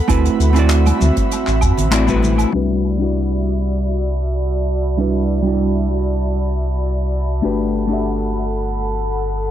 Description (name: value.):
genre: sunset chillout.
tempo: 98 BPM.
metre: 4/4.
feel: straight.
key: C lydian.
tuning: A4 = 440 Hz.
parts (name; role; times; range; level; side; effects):
hollow-body jazz guitar; accompaniment; 0.0-9.5 s; G3 to E5; -20 LUFS; moving between left 5 dB and right 6 dB; auto-pan, analog delay.
airy breathy pad; sustained chords; 0.0-9.5 s; C4 to B5; -24 LUFS; right 1 dB; chorus.
warm sub bass; bass; 0.1-9.5 s; G1 to F#2; -18 LUFS; equal; none.
electronic kick drum; drums; 0.1-2.2 s; none; -20 LUFS; equal; none.
jazz brush drum kit; drums; 0.1-9.4 s; handclaps, hi-hat, shaker, woodblock; -24 LUFS; right 1 dB; low-pass filter on hats, low-pass filter on perc, low-pass filter on snare, low-pass filter on room, analog delay.
congas; percussion; 0.9-2.4 s; none; -26 LUFS; right 3 dB; analog delay.
drifting glass-harmonics texture; texture; 4.2-9.5 s; A5; -35 LUFS; right 5 dB; chorus, built-in reverb.
room: light reverb, small room ambience.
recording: echo-heavy mix, low-pass filter.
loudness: -15 LUFS.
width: side -11 dB against mid.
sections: 0.0-2.5 A section; 2.5-9.5 B section.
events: band accent 1.9-2.2; filter sweep 2.5-9.5.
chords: 0.1 D13; 2.5 Cmaj9#11; 7.4 Gmaj9.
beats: | 0.09 0.70 1.32 1.93 | 2.54 3.15 3.76 4.38 | 4.99 5.60 6.21 6.83 | 7.44 8.05 8.66 9.28.